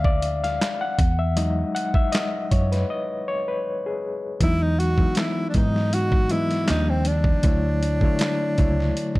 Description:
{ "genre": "R&B, neo-soul", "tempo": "79 BPM", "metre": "4/4", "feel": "swing 53% on 16ths", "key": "E major", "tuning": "A4 = 440 Hz", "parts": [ { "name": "overdriven reed electric piano", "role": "accompaniment", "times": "0.0-9.2 s", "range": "D3 to F#5", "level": "-25 LUFS", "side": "left 2 dB", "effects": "fast tremolo" }, { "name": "vintage muted fingered electric bass", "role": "bass", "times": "0.0-8.9 s", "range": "C#2 to G#2", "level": "-23 LUFS", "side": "equal", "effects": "none" }, { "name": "dusty soul sampler-style drum kit", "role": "drums", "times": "0.0-9.2 s", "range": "handclaps, hi-hat, kick drum, snare drum", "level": "-23 LUFS", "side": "equal", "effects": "none" }, { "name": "breathy tenor saxophone", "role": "melody", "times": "4.4-9.2 s", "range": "C4 to F#4", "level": "-26 LUFS", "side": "equal", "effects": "none" } ], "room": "little or no reverb", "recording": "dark, warm production", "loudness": "-20 LUFS", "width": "side -19 dB against mid", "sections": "0.0-4.4 A section; 4.4-9.2 B section", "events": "reed electric piano solo 0.0-4.4; break 2.9-4.4", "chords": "0.0 E7b9; 1.0 Emaj9; 4.4 Emaj7; 6.7 D#maj9; 7.4 Dmaj9" }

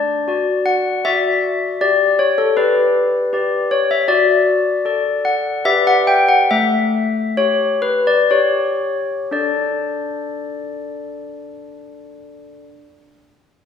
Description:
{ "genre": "classical, tune for handbells", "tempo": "57-80 BPM", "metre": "3/4", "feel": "straight", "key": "D major", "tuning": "A4 = 440 Hz", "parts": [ { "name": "handbells", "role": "solo", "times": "0.0-12.6 s", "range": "A3 to G5", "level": "-15 LUFS", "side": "left 3 dB", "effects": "none" } ], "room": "wet concert hall reverb, RT60 1.7 s", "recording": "heard from further back in the room, small room reverb", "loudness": "-14 LUFS", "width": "side -7 dB against mid", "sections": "0.0-9.3 A section; 9.3-12.4 B section", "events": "slowing down 2.9-9.3", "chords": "0.0 D; 1.8 G; 4.1 D/F#; 5.7 Gmaj7; 6.5 A7; 9.3 D5" }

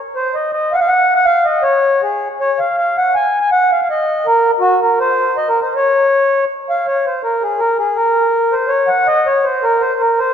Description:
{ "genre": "musette", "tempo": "161 BPM", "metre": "3/4", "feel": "straight", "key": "Db major, Bb minor from 6.8 s", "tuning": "A4 = 436 Hz", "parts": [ { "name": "mellow accordion", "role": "solo", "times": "0.2-10.3 s", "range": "Gb4 to Ab5", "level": "-12 LUFS", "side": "equal", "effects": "none" } ], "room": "wet concert hall reverb, RT60 2.3 s", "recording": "recorded in a church or concert hall", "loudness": "-12 LUFS", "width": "side -8 dB against mid", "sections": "0.0-6.8 A section; 6.8-10.3 B section", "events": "none", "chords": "none" }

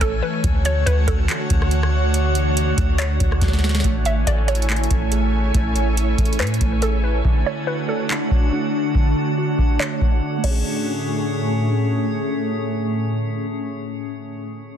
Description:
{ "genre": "hip hop, atmospheric cloud-rap", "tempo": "141 BPM", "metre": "4/4", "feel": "half-time", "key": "A major", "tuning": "A4 = 440 Hz", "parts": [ { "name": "hollow square pluck", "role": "melody", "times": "0.0-11.9 s", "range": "A4 to E5", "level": "-27 LUFS", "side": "equal", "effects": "chorus, low-pass filter, ping-pong delay" }, { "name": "ethereal airy pad", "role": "sustained chords", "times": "0.0-13.6 s", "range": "A2 to G#5", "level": "-23 LUFS", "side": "right 1 dB", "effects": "ensemble chorus, built-in reverb, sidechain pumping, low-pass filter" }, { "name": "soft 808-style bass", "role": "bass", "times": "0.0-7.2 s", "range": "A1 to A2", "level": "-19 LUFS", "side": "equal", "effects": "none" }, { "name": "booming analog drum machine", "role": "drums", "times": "0.0-10.6 s", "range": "crash cymbal, handclaps, hi-hat, kick drum, rim click, snare drum", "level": "-20 LUFS", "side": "equal", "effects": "none" }, { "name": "drifting glass-harmonics texture", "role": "texture", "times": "0.0-13.6 s", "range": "A3 to G#5", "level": "-30 LUFS", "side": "left 3 dB", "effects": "chorus, built-in reverb" }, { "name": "glassy digital keys", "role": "arpeggios", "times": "3.8-13.6 s", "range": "D3 to D5", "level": "-30 LUFS", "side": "right 3 dB", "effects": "chorus, low-pass filter, ping-pong delay" } ], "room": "light reverb, digital ambience", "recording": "dense, heavily limited modern master", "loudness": "-18 LUFS", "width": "side -9 dB against mid", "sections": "0.0-3.8 A section; 3.8-10.7 B section; 10.7-14.1 C section", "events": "drum fill 3.4-3.8; filter sweep 3.8-10.7", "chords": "0.4 Dmaj7; 3.8 Amaj7; 7.2 Dmaj7; 10.4 Amaj7" }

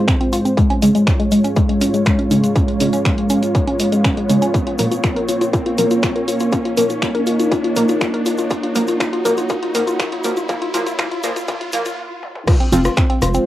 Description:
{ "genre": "melodic techno", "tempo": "121 BPM", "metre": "4/4", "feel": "straight", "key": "unclear", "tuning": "A4 = 440 Hz", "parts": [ { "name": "dark analog pad", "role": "sustained chords", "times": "0.0-13.5 s", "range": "Ab3 to Db5", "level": "-21 LUFS", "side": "right 1 dB", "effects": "chorus, sidechain pumping, cassette tape" }, { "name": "riser", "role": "sound effects", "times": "0.8-12.0 s", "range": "none", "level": "-28 LUFS", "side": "right 1 dB", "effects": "none" }, { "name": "woody wave-folded pluck", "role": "arpeggios", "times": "0.1-13.4 s", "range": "Ab3 to Bb4", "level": "-20 LUFS", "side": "left 2 dB", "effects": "chorus, sidechain pumping, cassette tape, analog delay" }, { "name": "electronic kick drum", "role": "drums", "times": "0.1-13.1 s", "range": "none", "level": "-18 LUFS", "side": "equal", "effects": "distortion, overdrive" }, { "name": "punchy analog drum machine", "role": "drums", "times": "0.1-13.4 s", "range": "crash cymbal, finger snaps, hi-hat, rim click, toms", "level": "-25 LUFS", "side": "equal", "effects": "high-pass filter on snare, high-pass filter on hats, high-pass filter on toms, high-pass filter on cymbals, high-pass filter on room" }, { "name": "egg shaker", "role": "percussion", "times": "0.1-13.4 s", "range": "none", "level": "-34 LUFS", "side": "left 2 dB", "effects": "none" }, { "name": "synth brass stab", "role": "stabs", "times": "0.8-12.8 s", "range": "Bb2 to F4", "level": "-21 LUFS", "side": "right 1 dB", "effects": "chorus, sidechain pumping, cassette tape, analog delay" }, { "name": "tight sequencer bass", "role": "bass", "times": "12.7-13.4 s", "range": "F1", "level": "-18 LUFS", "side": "equal", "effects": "sidechain pumping" } ], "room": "wet studio ambience, RT60 0.5 s", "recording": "home recording on cassette, high-pass filter", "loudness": "-15 LUFS", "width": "side -14 dB against mid", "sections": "0.0-12.5 A section", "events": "build-up 0.0-12.5; filter sweep on synth pluck 0.0-12.5; filter sweep on synth stab 0.0-12.5; filter sweep 0.0-12.5; riser 0.8-12.0; stop 12.0-12.5; drum fill 12.2", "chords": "0.0 Fm; 0.6 Db; 4.5 Bbm; 8.5 Gb; 12.5 Fm" }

